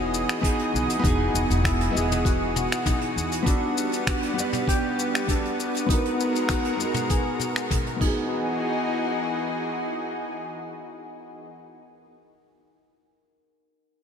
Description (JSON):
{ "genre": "sunset chillout", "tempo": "99 BPM", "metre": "4/4", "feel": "straight", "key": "E lydian", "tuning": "A4 = 440 Hz", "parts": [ { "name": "nylon-string guitar", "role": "accompaniment", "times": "0.0-12.1 s", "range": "B3 to F#5", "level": "-28 LUFS", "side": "right 1 dB", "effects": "auto-pan, low-pass filter, ping-pong delay" }, { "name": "lush unison pad", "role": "sustained chords", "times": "0.0-11.5 s", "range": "E3 to D#5", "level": "-29 LUFS", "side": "equal", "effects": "chorus" }, { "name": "concert harp", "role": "arpeggios", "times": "0.0-10.7 s", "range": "D4 to A#4", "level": "-32 LUFS", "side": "left 4 dB", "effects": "low-pass filter, ping-pong delay" }, { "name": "upright bass", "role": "bass", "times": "0.0-3.4 s", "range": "E1 to E2", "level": "-26 LUFS", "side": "equal", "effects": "none" }, { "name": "jazz brush drum kit", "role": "drums", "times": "0.1-8.1 s", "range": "crash cymbal, finger snaps, hi-hat, shaker, toms", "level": "-30 LUFS", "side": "left 2 dB", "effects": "none" }, { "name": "electronic kick drum", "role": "drums", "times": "0.4-8.1 s", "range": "none", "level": "-25 LUFS", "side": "equal", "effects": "none" } ], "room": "moderate lush hall reverb, RT60 2.8 s", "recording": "bright 1980s-style digital production", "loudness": "-22 LUFS", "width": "side -7 dB against mid", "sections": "0.0-8.3 A section; 8.3-10.7 B section", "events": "filter sweep on nylon-string guitar 0.0-8.3; filter sweep on harp 0.0-8.3", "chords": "0.0 Emaj9; 3.5 Gmaj7; 5.9 G#m9; 8.0 Emaj9" }